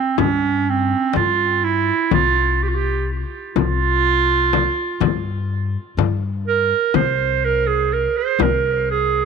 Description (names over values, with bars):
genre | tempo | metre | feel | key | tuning
Arabic maqam ensemble | 124 BPM (eighths) | 10/8 | straight | C maqam hijaz | A4 = 442 Hz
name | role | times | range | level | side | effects
clear clarinet | melody | 0.0-9.2 s | C4 to C5 | -18 LUFS | right 8 dB | tape echo
upright bass | bass | 0.2-9.2 s | C2 to G2 | -22 LUFS | left 3 dB | none
frame drum | percussion | 0.2-8.6 s | none | -20 LUFS | left 16 dB | none
room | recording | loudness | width
light reverb, small room ambience | 1960s-style stereo with parts hard left and right | -16 LUFS | side -5 dB against mid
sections
0.0-9.2 A section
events
none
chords
none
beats
0.19 0.67 1.15 1.63 | 2.12 2.60 3.08 3.56 4.04 4.53 5.01 5.49 5.97 6.46 | 6.94 7.42 7.91 8.39 8.87